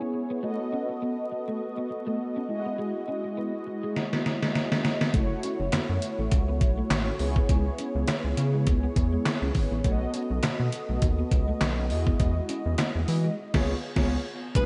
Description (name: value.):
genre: early-eighties boogie funk.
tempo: 102 BPM.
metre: 4/4.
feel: swing 56% on 16ths.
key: unclear.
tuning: A4 = 440 Hz.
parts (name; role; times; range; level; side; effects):
mellow synth brass; accompaniment; 0.0-14.7 s; E#3 to G#5; -34 LUFS; equal; chorus, phaser.
electric guitar at the edge of break-up; riff; 0.0-14.7 s; G#3 to C#4; -38 LUFS; equal; ensemble chorus.
detuned 8-bit digital drum machine; drums; 4.0-14.7 s; crash cymbal, handclaps, hi-hat, kick drum, snare drum; -29 LUFS; equal; none.
rubbery square bass; bass; 5.1-14.7 s; F#1 to E3; -30 LUFS; equal; none.
oud; melody; 14.6-14.7 s; B4; -28 LUFS; equal; none.
string machine, full ensemble; sustained chords; 14.6-14.7 s; B4 to D#6; -41 LUFS; equal; ensemble chorus.
room: moderate lush hall reverb, RT60 2.6 s.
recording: big arena sound, vinyl crackle, nothing above 11.0 kHz.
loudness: -27 LUFS.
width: mono.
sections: 0.0-14.6 A section.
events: drum fill 4.0-5.1; band accent 13.4-14.6.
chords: 0.4 B7; 2.5 Emaj9; 5.1 F#m7; 7.2 C#m7; 9.8 B7; 11.9 Emaj9; 13.4 C#7.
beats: | 0.43 1.02 1.61 2.20 | 2.79 3.38 3.96 4.55 | 5.14 5.73 6.32 6.90 | 7.49 8.08 8.67 9.26 | 9.85 10.43 11.02 11.61 | 12.20 12.79 13.38 13.96 | 14.55.